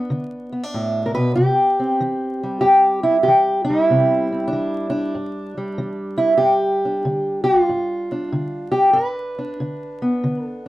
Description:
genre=acoustic country blues, solo or duo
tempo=95 BPM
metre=4/4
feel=swing 66% on 8ths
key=G mixolydian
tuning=A4 = 440 Hz
part: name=fingerpicked acoustic archtop guitar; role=solo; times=0.0-10.7 s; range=G2 to B4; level=-17 LUFS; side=equal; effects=none
room=light reverb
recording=dark, warm production, vinyl crackle, faint mains hum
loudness=-17 LUFS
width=side -16 dB against mid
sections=0.0-10.7 A section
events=none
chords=0.0 G (rootless); 1.4 C; 6.4 G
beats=0.09 0.72 | 1.36 1.99 2.62 3.26 | 3.89 4.52 5.16 5.79 | 6.42 7.06 7.69 8.33 | 8.96 9.60 10.23

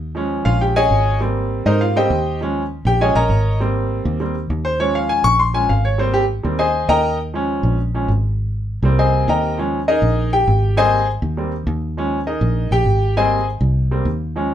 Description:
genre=latin, salsa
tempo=201 BPM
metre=4/4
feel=straight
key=Ab major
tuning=A4 = 440 Hz
part: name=fingered electric bass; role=bass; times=0.0-14.5 s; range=Ab1 to Ab2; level=-19 LUFS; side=equal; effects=none
part: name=clear baby grand piano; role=accompaniment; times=0.1-14.5 s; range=F3 to Db6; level=-18 LUFS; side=equal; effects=none
room=moderate studio ambience, RT60 0.5 s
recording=band playing live in one room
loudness=-16 LUFS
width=side -10 dB against mid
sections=0.0-14.5 A section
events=grand piano solo 0.0-14.5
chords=0.0 Eb7sus4; 1.2 Abmaj9; 2.4 Eb7sus4; 3.6 Abmaj9; 4.8 Eb7sus4; 6.0 Abmaj9; 7.2 Eb7sus4; 8.4 Abmaj9; 9.6 Eb7sus4; 10.8 Abmaj9; 12.0 Eb7sus4; 13.2 Abmaj9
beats=| 0.01 0.32 0.61 0.91 | 1.21 1.51 1.81 2.11 | 2.41 2.71 3.01 3.31 | 3.61 3.90 4.20 4.50 | 4.80 5.10 5.40 5.70 | 6.00 6.30 6.60 6.89 | 7.19 7.49 7.79 8.09 | 8.39 8.69 8.98 9.28 | 9.58 9.88 10.18 10.48 | 10.78 11.07 11.37 11.67 | 11.97 12.27 12.57 12.87 | 13.16 13.46 13.76 14.06 | 14.36

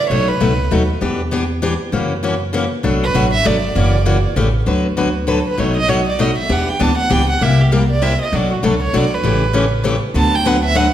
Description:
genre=acoustic string swing (jazz manouche)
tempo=197 BPM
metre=3/4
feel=swing 58% on 8ths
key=B minor, D major from 4.7 s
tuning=A4 = 442 Hz
part: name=warm violin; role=melody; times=0.0-0.9, 3.0-10.9 s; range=F#4 to A5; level=-19 LUFS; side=right 4 dB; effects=none
part: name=picked steel-string acoustic guitar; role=accompaniment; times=0.1-10.9 s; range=B2 to B4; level=-17 LUFS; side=left 2 dB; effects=none
part: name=upright bass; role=bass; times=0.1-10.9 s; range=F#1 to F#2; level=-19 LUFS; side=equal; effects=none
room=wet recital hall reverb, RT60 1.6 s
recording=recorded in a church or concert hall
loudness=-14 LUFS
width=side -11 dB against mid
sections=0.0-4.7 A section; 4.7-10.9 B section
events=violin solo 4.7-10.9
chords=0.1 B7; 1.0 Em7; 1.9 F#7; 2.8 Bm7; 3.8 F#7b13; 4.4 A7; 4.7 D6; 5.6 B7; 6.5 Em7; 7.4 C7; 8.3 Bm7; 9.2 A7; 10.1 D6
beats=| 0.10 0.41 0.71 | 1.01 1.32 1.62 | 1.93 2.23 2.54 | 2.84 3.15 3.45 | 3.76 4.06 4.37 | 4.67 4.97 5.28 | 5.58 5.89 6.19 | 6.50 6.80 7.11 | 7.41 7.71 8.02 | 8.32 8.63 8.93 | 9.24 9.54 9.84 | 10.15 10.45 10.76

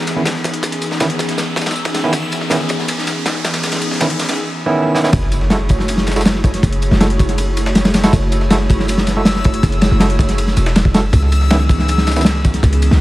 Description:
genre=drum and bass, jungle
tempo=160 BPM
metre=4/4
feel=straight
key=F# minor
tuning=A4 = 439 Hz
part: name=airy breathy pad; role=sustained chords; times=0.0-13.0 s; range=E3 to C#5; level=-22 LUFS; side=equal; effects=chorus
part: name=riser and impact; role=sound effects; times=0.0-6.6 s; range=none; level=-27 LUFS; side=equal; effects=none
part: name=backwards swelling texture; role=texture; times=0.0-13.0 s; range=E6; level=-30 LUFS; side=left 3 dB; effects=built-in reverb
part: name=crunchy breakbeat drum kit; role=drums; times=0.1-13.0 s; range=kick drum, ride cymbal, snare drum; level=-16 LUFS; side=equal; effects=high-pass filter on kick, high-pass filter on cymbals, high-pass filter on snare, high-pass filter on room
part: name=dusty soul sampler-style drum kit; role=drums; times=0.1-13.0 s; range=hi-hat, snare drum, tambourine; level=-27 LUFS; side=left 1 dB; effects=high-pass filter on perc, high-pass filter on snare, high-pass filter on hats
part: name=overdriven tine electric piano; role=stabs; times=0.2-12.2 s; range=D#3 to A4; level=-21 LUFS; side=right 2 dB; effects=dub echo
part: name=warm 808-style bass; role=bass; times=5.1-13.0 s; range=E1 to C#2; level=-16 LUFS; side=equal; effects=none
room=studio reverb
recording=vinyl crackle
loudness=-13 LUFS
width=side -17 dB against mid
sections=0.0-5.1 A section; 5.1-13.0 B section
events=build-up 0.0-5.1; riser 0.0-4.4; filter sweep on tine electric piano 0.0-5.1; drum fill 4.9; drop 5.1-13.0; impact 5.1-6.6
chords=0.0 C#m9; 5.1 F#m9; 11.1 C#m9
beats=0.26 | 0.63 1.01 1.38 1.76 | 2.13 2.51 2.88 3.26 | 3.63 4.01 4.38 4.76 | 5.13 5.51 5.88 6.26 | 6.63 7.01 7.38 7.76 | 8.13 8.51 8.88 9.26 | 9.63 10.01 10.38 10.76 | 11.13 11.51 11.88 12.26 | 12.63 13.01

